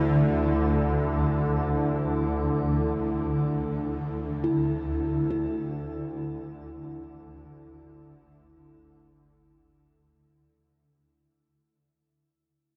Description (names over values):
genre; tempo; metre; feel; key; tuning
dark ambient drone; free time; none; none; unclear; A4 = 439 Hz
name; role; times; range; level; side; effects
deep dark ambient pad; sustained chords; 0.0-10.2 s; D4 to A4; -34 LUFS; equal; chorus, built-in reverb, shimmer reverb
bronze singing bowl; arpeggios; 0.0-12.2 s; A3 to E4; -36 LUFS; equal; tape echo, shimmer reverb
swarming drone; drone; 0.0-10.3 s; D2 to D3; -29 LUFS; equal; built-in reverb
bronze singing bowl; texture; 0.0-10.2 s; A4; -49 LUFS; equal; none
room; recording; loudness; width
wet huge ambient reverb, RT60 7.6 s; dark, warm production; -27 LUFS; mono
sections
0.0-10.2 A section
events
fade-out 0.0-10.2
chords
0.0 Dsus2